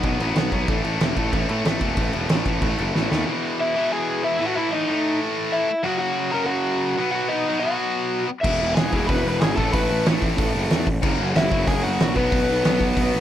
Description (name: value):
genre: punk rock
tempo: 186 BPM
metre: 4/4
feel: straight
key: E major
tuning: A4 = 440 Hz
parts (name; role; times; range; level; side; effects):
- tight distorted guitar; riff; 0.0-13.2 s; E2 to B3; -24 LUFS; left 1 dB; distortion
- fuzz picked electric bass; bass; 0.0-3.2, 8.4-13.2 s; E1 to A2; -25 LUFS; equal; overdrive
- loose indie drum kit; drums; 0.0-3.2, 8.4-13.0 s; crash cymbal, hi-hat, kick drum, snare drum; -23 LUFS; right 1 dB; none
- overdriven semi-hollow guitar; melody; 3.6-13.2 s; B3 to B5; -23 LUFS; left 1 dB; none
room: moderate studio ambience, RT60 0.5 s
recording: none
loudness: -19 LUFS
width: side -11 dB against mid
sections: 0.0-3.3 A section; 3.3-13.2 B section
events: drum fill 2.9-3.3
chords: 0.0 B5; 0.7 A5; 3.3 E; 4.4 A5; 5.9 F#; 7.0 B; 8.4 E; 9.6 A5; 11.0 F#5; 12.2 B5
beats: 0.04 0.36 | 0.68 1.01 1.33 1.65 | 1.98 2.30 2.62 2.95 | 3.27 3.59 3.92 4.24 | 4.56 4.89 5.21 5.53 | 5.85 6.18 6.50 6.82 | 7.15 7.47 7.79 8.12 | 8.44 8.76 9.09 9.41 | 9.73 10.05 10.38 10.70 | 11.02 11.35 11.67 11.99 | 12.32 12.64 12.96